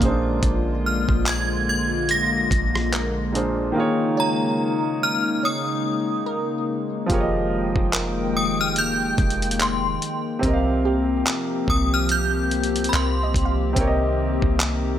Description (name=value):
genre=contemporary R&B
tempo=72 BPM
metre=4/4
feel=swing 58% on 16ths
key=F minor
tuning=A4 = 440 Hz
part: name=warm concert grand piano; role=accompaniment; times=0.0-15.0 s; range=Bb2 to F5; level=-26 LUFS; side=right 2 dB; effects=none
part: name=hollow soft pad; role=sustained chords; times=0.0-15.0 s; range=Db3 to G5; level=-25 LUFS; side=left 3 dB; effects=chorus
part: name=soft 808-style bass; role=bass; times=0.0-15.0 s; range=F1 to C2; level=-26 LUFS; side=equal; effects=none
part: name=dusty soul sampler-style drum kit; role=drums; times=0.0-14.8 s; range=handclaps, hi-hat, kick drum, rim click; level=-24 LUFS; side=equal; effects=none
part: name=glassy wavetable pluck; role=texture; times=0.4-14.6 s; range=G4 to F5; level=-33 LUFS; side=right 2 dB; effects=chorus, ping-pong delay
part: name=synth chime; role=melody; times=0.9-13.6 s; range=Bb5 to Bb6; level=-25 LUFS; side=equal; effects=ensemble chorus, phaser
room=light reverb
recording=none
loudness=-19 LUFS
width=side -10 dB against mid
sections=0.0-7.1 A section; 7.1-15.0 B section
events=silent gap 3.8-7.1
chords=0.0 Bb7; 3.8 Eb7sus4; 7.1 Fm11; 10.4 C7sus4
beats=| 0.43 1.26 2.09 2.93 | 3.76 4.59 5.43 6.26 | 7.09 7.93 8.76 9.59 | 10.43 11.26 12.09 12.93 | 13.76 14.59